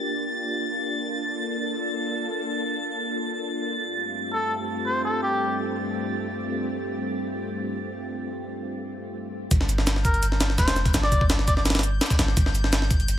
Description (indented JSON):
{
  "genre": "drum and bass, jungle",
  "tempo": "168 BPM",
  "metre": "4/4",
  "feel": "straight",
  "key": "unclear",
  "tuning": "A4 = 440 Hz",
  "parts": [
    { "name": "soft string machine", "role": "sustained chords", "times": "0.0-9.5 s", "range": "G2 to A4", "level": "-29 LUFS", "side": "equal", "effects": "ensemble chorus" },
    { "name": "drifting glass-harmonics texture", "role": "texture", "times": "0.0-13.2 s", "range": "G6 to A6", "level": "-33 LUFS", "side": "right 1 dB", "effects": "chorus, built-in reverb" },
    { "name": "trumpet with cup mute", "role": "melody", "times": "4.3-5.6, 10.0-11.6 s", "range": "G4 to D5", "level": "-27 LUFS", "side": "left 1 dB", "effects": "dub echo" },
    { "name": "long sustained 808-style bass", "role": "bass", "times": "9.5-13.2 s", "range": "F1 to G1", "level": "-24 LUFS", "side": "equal", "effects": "tube saturation" },
    { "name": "breakbeat sampler-style drum kit", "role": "drums", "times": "9.5-13.2 s", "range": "hi-hat, kick drum, snare drum", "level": "-22 LUFS", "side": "equal", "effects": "none" },
    { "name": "electronic shaker and snare drum", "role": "drums", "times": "9.5-13.2 s", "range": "none", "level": "-34 LUFS", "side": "left 3 dB", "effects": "high-pass filter on perc, high-pass filter on snare, high-pass filter on room" }
  ],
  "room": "light reverb",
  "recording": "none",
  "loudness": "-23 LUFS",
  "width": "side -11 dB against mid",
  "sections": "0.0-9.5 A section; 9.5-13.2 B section",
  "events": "break 8.1-9.5; drop 9.5-13.2",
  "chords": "0.0 Gm7; 3.8 Fadd9/G; 9.5 N.C."
}